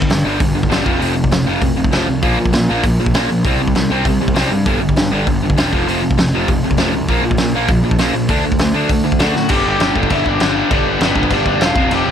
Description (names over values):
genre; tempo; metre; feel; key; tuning
punk rock; 198 BPM; 4/4; straight; unclear; A4 = 442 Hz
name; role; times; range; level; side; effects
distorted electric guitar; riff; 0.0-12.1 s; F2 to D4; -16 LUFS; equal; distortion
fuzz picked electric bass; bass; 0.0-12.1 s; E1 to Bb2; -21 LUFS; equal; overdrive
loose indie drum kit; drums; 0.0-12.0 s; crash cymbal, hi-hat, kick drum, snare drum; -18 LUFS; equal; none
bluesy overdriven lead guitar; melody; 9.2-12.1 s; B3 to G5; -20 LUFS; left 4 dB; distortion
room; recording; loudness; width
little or no reverb; none; -13 LUFS; side -8 dB against mid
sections
0.0-9.5 A section; 9.5-12.1 B section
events
drum fill 9.4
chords
0.0 G5; 0.9 F5; 2.2 Bb5; 3.4 C5; 4.7 G5; 5.7 F5; 7.1 Bb5; 8.3 D; 9.5 G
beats
0.10 0.41 0.71 | 1.01 1.32 1.62 1.93 | 2.23 2.54 2.84 3.14 | 3.45 3.75 4.06 4.36 | 4.66 4.97 5.27 5.58 | 5.88 6.18 6.49 6.79 | 7.09 7.39 7.70 8.00 | 8.30 8.60 8.90 9.21 | 9.51 9.81 10.11 10.41 | 10.71 11.01 11.31 11.61 | 11.91